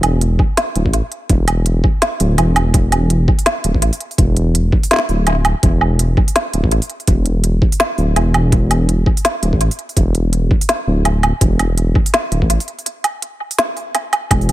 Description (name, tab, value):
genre	half-time drum and bass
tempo	166 BPM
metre	4/4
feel	swing 58% on 16ths, half-time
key	unclear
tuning	A4 = 440 Hz
part	dark detuned saw bass	bass	0.0-14.5 s	D1 to A1	-14 LUFS	equal	none
part	organic electronic drum kit	drums	0.0-14.5 s	hi-hat, snare drum, woodblock	-18 LUFS	right 1 dB	tape echo
part	electronic kick drum	drums	0.4-14.4 s	none	-15 LUFS	equal	overdrive
room	digital ambience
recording	echo-heavy mix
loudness	-13 LUFS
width	side -15 dB against mid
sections	0.0-14.3 A section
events	drop 0.0-14.3; kick drops out 2.0-2.7; break 12.9-14.3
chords	none